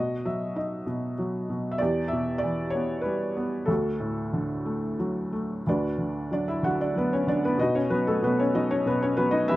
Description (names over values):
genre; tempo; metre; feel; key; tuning
classical, lyrical solo piano; 94 BPM; 3/4; rubato; D major; A4 = 439 Hz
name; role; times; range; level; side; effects
felt-muted upright piano; solo; 0.0-9.6 s; D2 to F#5; -24 LUFS; equal; none
room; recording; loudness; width
light reverb; close, detailed microphones; -24 LUFS; side -16 dB against mid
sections
0.0-5.7 A section; 5.7-9.6 B section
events
none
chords
0.0 B; 1.8 Em; 3.7 D; 5.7 D6; 7.6 B